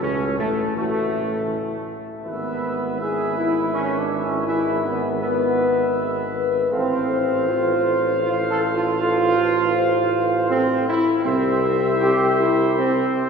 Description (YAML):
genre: classical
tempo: 80 BPM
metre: 3/4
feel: straight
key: unclear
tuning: A4 = 440 Hz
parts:
  - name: dark trumpet section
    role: melody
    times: 0.0-13.3 s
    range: A3 to F5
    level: -27 LUFS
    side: equal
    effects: none
  - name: dark French horn section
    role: sustained chords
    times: 0.0-13.3 s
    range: E4 to C5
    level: -25 LUFS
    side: left 5 dB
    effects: none
  - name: warm trombone section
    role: sustained chords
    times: 0.0-13.3 s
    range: A3 to A4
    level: -22 LUFS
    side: right 2 dB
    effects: none
  - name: warm tuba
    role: bass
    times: 0.0-13.2 s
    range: G#1 to C#2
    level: -26 LUFS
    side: right 2 dB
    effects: none
room: wet cathedral reverb, RT60 5.2 s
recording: recorded in a church or concert hall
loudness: -18 LUFS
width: side -6 dB against mid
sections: 0.0-13.3 A section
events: none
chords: 0.0 A; 2.3 E/G#; 6.7 F/A; 11.2 C